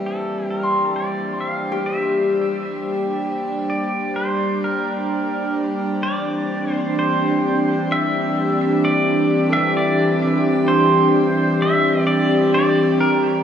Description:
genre	ambient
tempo	65 BPM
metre	4/4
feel	straight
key	unclear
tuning	A4 = 441 Hz
part	airy breathy pad	sustained chords	0.0-13.4 s	E3 to F5	-20 LUFS	equal	chorus, shimmer reverb
part	Celtic harp	arpeggios	0.0-13.4 s	E3 to C6	-26 LUFS	left 3 dB	shimmer reverb, tape echo
part	hand-pumped harmonium	drone	0.0-13.4 s	G3	-25 LUFS	left 1 dB	none
part	pedal steel guitar	melody	0.1-13.4 s	A4 to F5	-23 LUFS	right 2 dB	shimmer reverb, tape echo
room	wet spring reverb, RT60 2.9 s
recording	echo-heavy mix, studio reverb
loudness	-17 LUFS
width	side -8 dB against mid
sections	0.0-13.4 A section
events	fade-in on analog synth pad 0.0-13.4; fade-in on pedal steel guitar 0.0-13.4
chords	0.0 Bb; 6.1 Cadd9

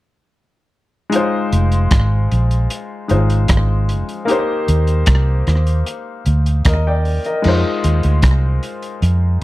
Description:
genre	lovers rock reggae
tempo	76 BPM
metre	4/4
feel	straight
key	unclear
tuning	A4 = 440 Hz
part	clear concert grand piano	accompaniment	1.1-9.4 s	Ab3 to G5	-20 LUFS	left 3 dB	slapback echo
part	crunchy breakbeat drum kit	drums	1.1-9.2 s	crash cymbal, hi-hat, kick drum, rim click	-18 LUFS	equal	slapback echo
part	vintage muted fingered electric bass	bass	1.5-9.4 s	F1 to F2	-14 LUFS	equal	none
room	little or no reverb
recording	dry, close 1970s-style studio recording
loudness	-14 LUFS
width	side -17 dB against mid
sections	1.1-7.4 A section; 7.4-9.4 B section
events	none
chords	1.1 Fm7; 4.3 Eb6; 7.4 Fm7

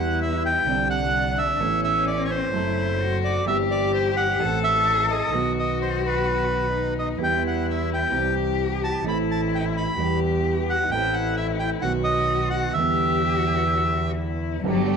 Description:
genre	tango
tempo	129 BPM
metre	4/4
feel	rubato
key	E minor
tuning	A4 = 439 Hz
part	bandoneon	melody	0.0-14.1 s	B4 to B5	-24 LUFS	equal	none
part	warm cello	second line	0.0-15.0 s	F#3 to A4	-27 LUFS	left 10 dB	none
part	dark upright piano	accompaniment	0.0-15.0 s	G1 to A4	-28 LUFS	right 10 dB	none
part	clear double bass	bass	0.0-15.0 s	F#1 to E2	-28 LUFS	equal	none
part	clear studio string section	stabs	14.7-15.0 s	A3 to G4	-30 LUFS	right 8 dB	none
room	wet spring reverb, RT60 1.4 s, studio reverb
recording	1960s-style stereo with parts hard left and right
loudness	-20 LUFS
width	side -6 dB against mid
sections	0.0-14.6 A section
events	none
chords	0.0 Em; 0.7 Csus2; 1.6 Aadd9; 2.5 F#dim; 3.5 C/G; 4.4 Am; 5.3 B; 7.2 Em; 8.1 C; 9.1 Am; 10.0 Em; 10.9 Am; 11.8 B; 12.8 Em7

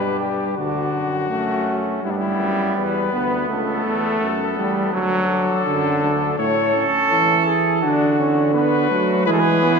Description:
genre	classical, imitative canzona for brass ensemble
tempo	83 BPM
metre	4/4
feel	straight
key	D major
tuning	A4 = 442 Hz
part	mellow trumpet	melody	0.0-9.8 s	D4 to C#5	-23 LUFS	left 7 dB	none
part	mellow trumpet	second line	0.0-9.8 s	B3 to A4	-24 LUFS	right 4 dB	none
part	warm trombone	accompaniment	0.0-9.8 s	D3 to D4	-22 LUFS	right 1 dB	none
part	mellow euphonium	bass	0.0-9.8 s	C#2 to F#3	-22 LUFS	right 2 dB	none
room	wet church reverb, RT60 3.4 s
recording	none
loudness	-17 LUFS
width	side -5 dB against mid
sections	0.6-9.8 A section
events	none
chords	0.0 G; 0.6 D; 2.0 Em; 3.5 A/C#; 4.9 D; 6.4 A; 7.8 Bm/D; 9.3 E

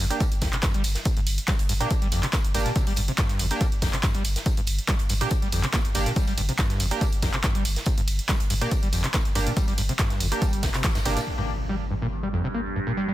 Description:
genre	driving peak-time techno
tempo	141 BPM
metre	4/4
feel	straight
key	G minor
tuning	A4 = 440 Hz
part	screaming distorted acid line	riff	0.0-13.1 s	F2 to Bb3	-30 LUFS	equal	distortion, wide subtle chorus, sidechain pumping, ping-pong delay
part	saturated sub bass	bass	0.0-11.2 s	G1	-28 LUFS	equal	sidechain pumping, low-pass filter
part	big rock drum kit	drums	0.0-11.3 s	hi-hat, snare drum, tambourine	-37 LUFS	equal	high-pass filter on hats, high-pass filter on snare, high-pass filter on perc, high-pass filter on room
part	sync-sweep polysynth	stabs	0.1-11.2 s	Bb3 to G4	-32 LUFS	right 2 dB	chorus, sidechain pumping, ping-pong delay
part	punchy analog drum machine	drums	0.1-11.2 s	handclaps, hi-hat, ride cymbal	-30 LUFS	right 1 dB	sidechain pumping on hats, sidechain pumping on cymbals
part	electronic kick drum	drums	0.2-10.9 s	none	-25 LUFS	equal	none
part	overtone-sweeping drone	drone	11.9-13.1 s	G2	-32 LUFS	right 3 dB	chorus, built-in reverb, sidechain pumping
part	impact	sound effects	11.3-13.0 s	none	-32 LUFS	equal	none
room	little or no reverb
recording	dense, heavily limited modern master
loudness	-22 LUFS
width	side -15 dB against mid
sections	0.0-11.3 A section; 11.3-13.1 B section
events	drop 0.0-11.3; band accent 10.8; impact 11.3-13.0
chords	0.0 Gm; 11.3 N.C.

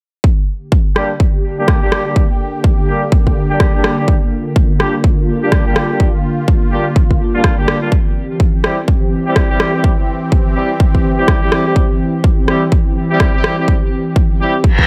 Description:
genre	bass house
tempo	125 BPM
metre	4/4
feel	swing 61% on 16ths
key	G dorian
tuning	A4 = 440 Hz
part	sweeping resonant pad	sustained chords	0.7-14.9 s	D3 to G4	-22 LUFS	equal	chorus, sidechain pumping
part	electronic kick drum	drums	0.2-14.9 s	none	-15 LUFS	equal	overdrive, small room ambience
part	clear horn section	stabs	1.0-14.5 s	G3 to G4	-22 LUFS	equal	sidechain pumping, low-pass filter, tape echo
part	electronic rim click	drums	1.0-13.6 s	none	-20 LUFS	equal	overdrive, small room ambience
part	reverse cymbal	sound effects	14.7-14.9 s	none	-15 LUFS	equal	none
room	light reverb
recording	none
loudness	-14 LUFS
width	mono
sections	0.2-14.9 A section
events	reverse cymbal 14.7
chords	0.2 Gm; 7.9 C

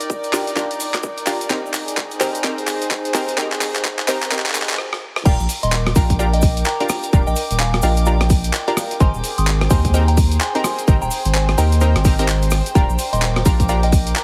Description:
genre	UK garage, two-step garage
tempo	128 BPM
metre	4/4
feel	swing 61% on 16ths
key	Eb major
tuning	A4 = 440 Hz
part	breakbeat sampler-style drum kit	drums	0.0-14.2 s	crash cymbal, handclaps, hi-hat, rim click	-25 LUFS	equal	high-pass filter on snare, high-pass filter on hats, high-pass filter on cymbals, high-pass filter on room
part	tube shaker	percussion	0.0-14.2 s	none	-34 LUFS	equal	none
part	rich chamber string section	texture	0.0-14.2 s	Eb4 to D6	-29 LUFS	equal	sidechain pumping
part	electronic kick drum	drums	0.1-14.0 s	none	-18 LUFS	equal	high-pass filter on kick, high-pass filter on room
part	punchy chord stab	stabs	0.3-13.8 s	C4 to Bb4	-26 LUFS	equal	chorus, cassette tape, delay
part	soft synth bell	melody	5.3-14.2 s	C5 to Eb6	-28 LUFS	equal	chorus, dub echo
part	saturated sub bass	bass	5.3-14.1 s	Eb1 to Eb2	-20 LUFS	equal	none
room	light reverb, digital ambience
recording	heavily compressed radio sound, vinyl crackle, high-pass filter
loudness	-18 LUFS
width	mono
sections	0.0-5.3 A section; 5.3-14.2 B section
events	build-up 0.0-5.3; drum fill 0.0-4.8, 4.8-5.3; stop 4.8-5.3; drop 5.3-14.2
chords	0.0 Ebmaj7; 1.5 Abmaj7; 5.3 Ebmaj7; 9.0 Abmaj7; 12.8 Ebmaj7

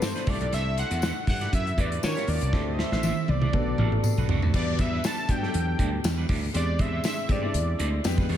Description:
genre	polished 1980s jazz-funk pop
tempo	120 BPM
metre	4/4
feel	swing 54% on 16ths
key	E minor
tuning	A4 = 441 Hz
part	fat analog lead	melody	0.0-8.1 s	C5 to A5	-32 LUFS	equal	slapback echo
part	warm concert grand piano	accompaniment	0.0-8.4 s	F#3 to B4	-33 LUFS	left 4 dB	wide subtle chorus, slapback echo
part	electric guitar at the edge of break-up	riff	0.0-8.4 s	G3 to D5	-36 LUFS	right 5 dB	wide subtle chorus, slapback echo
part	slap bass	bass	0.0-8.4 s	A1 to D#3	-28 LUFS	equal	none
part	modern studio drum kit	drums	0.0-8.4 s	crash cymbal, hi-hat, kick drum, snare drum, toms	-27 LUFS	equal	none
part	tambourine	percussion	0.0-8.2 s	none	-42 LUFS	left 9 dB	none
room	light reverb, studio ambience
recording	none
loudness	-23 LUFS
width	side -10 dB against mid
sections	0.0-4.5 A section; 4.5-8.4 B section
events	drum fill 2.5-4.5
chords	0.3 C6; 2.0 D#9; 2.5 D7sus4; 3.5 Bm7; 4.5 Em7; 6.5 E7alt

